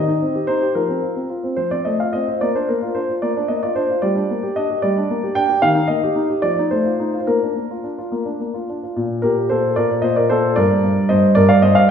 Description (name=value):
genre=classical-period piano sonatina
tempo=74 BPM (dotted quarters)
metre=6/8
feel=rubato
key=Bb major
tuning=A4 = 441 Hz
part: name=warm grand piano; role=solo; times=0.0-11.9 s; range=G2 to G5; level=-16 LUFS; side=equal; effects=none
room=wet recital hall reverb, RT60 1.4 s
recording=heard from further back in the room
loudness=-16 LUFS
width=side -7 dB against mid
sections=0.0-9.0 A section; 9.0-11.9 A section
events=none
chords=0.0 Cm/Eb; 0.8 Fsus4; 1.6 F; 2.4 Bb; 4.0 Gm; 5.6 Eb; 6.4 F7; 7.3 Bb; 9.0 Bbmaj13; 10.6 Gm